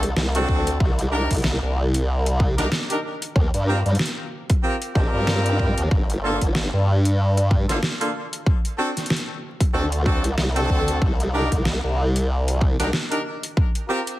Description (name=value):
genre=glitch hop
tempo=94 BPM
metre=4/4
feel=swing 57% on 16ths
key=unclear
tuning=A4 = 440 Hz
part: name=formant-sweep wobble bass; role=bass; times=0.0-12.9 s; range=G1 to G2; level=-21 LUFS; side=equal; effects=chorus, tube saturation
part: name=dubstep drum kit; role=drums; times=0.0-14.2 s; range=hi-hat, rim click, snare drum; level=-26 LUFS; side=equal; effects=overdrive
part: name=bright horn section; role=stabs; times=0.3-14.0 s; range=Bb3 to Bb4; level=-26 LUFS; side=equal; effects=sidechain pumping, ping-pong delay
part: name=electronic kick drum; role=drums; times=0.5-13.7 s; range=none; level=-21 LUFS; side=equal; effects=overdrive
room=light reverb, digital ambience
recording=heavily compressed radio sound, vinyl crackle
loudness=-19 LUFS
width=side -16 dB against mid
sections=0.0-14.2 A section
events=none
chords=0.0 D7; 0.8 Cm7; 3.4 Eb6 (rootless); 5.9 Gm7; 8.5 D7; 11.0 Cm7; 13.6 C7sus4